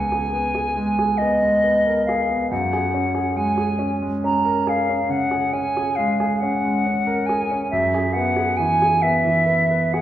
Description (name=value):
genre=classical, impressionist duo for flute and grand piano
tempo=46 BPM (dotted quarters)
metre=12/8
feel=rubato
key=unclear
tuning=A4 = 439 Hz
part: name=silver concert flute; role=melody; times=0.0-10.0 s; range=D#5 to A#5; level=-20 LUFS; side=equal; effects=none
part: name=clear concert grand piano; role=accompaniment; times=0.0-10.0 s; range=C#2 to B4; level=-22 LUFS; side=right 1 dB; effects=none
room=wet recital hall reverb, RT60 1.5 s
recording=heard from further back in the room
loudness=-18 LUFS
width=side -12 dB against mid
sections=0.0-10.0 A section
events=none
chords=0.0 G#madd9/C#; 2.5 F#add9; 7.7 E/F#